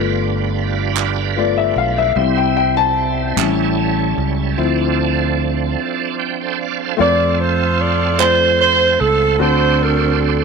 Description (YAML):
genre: slow gospel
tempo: 50 BPM (dotted quarters)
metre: 6/8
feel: straight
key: F major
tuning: A4 = 436 Hz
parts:
  - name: warm upright piano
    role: accompaniment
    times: 0.0-10.4 s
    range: D3 to A5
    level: -19 LUFS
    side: left 9 dB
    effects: none
  - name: bright tonewheel organ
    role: sustained chords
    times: 0.0-10.4 s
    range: D3 to G5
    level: -22 LUFS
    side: right 13 dB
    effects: slow rotary speaker, chorus vibrato
  - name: fingered electric bass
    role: bass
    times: 0.0-10.4 s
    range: G1 to F2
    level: -20 LUFS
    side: right 3 dB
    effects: none
  - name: group handclap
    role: percussion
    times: 1.0-3.8, 8.2-8.6 s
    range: none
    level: -21 LUFS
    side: right 16 dB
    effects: none
  - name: warm saxophone section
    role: melody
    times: 7.0-10.4 s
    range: F4 to D5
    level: -14 LUFS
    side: right 3 dB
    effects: none
room: light reverb, small room ambience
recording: 1960s-style stereo with parts hard left and right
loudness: -14 LUFS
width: side -5 dB against mid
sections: 0.0-7.0 A section; 7.0-10.4 B section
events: upright piano solo 0.0-7.0; break 5.8-7.0; tonewheel organ fill 5.8-7.0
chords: 0.0 G7; 2.2 C; 3.4 A7; 4.6 Dm7; 7.0 F; 9.4 D7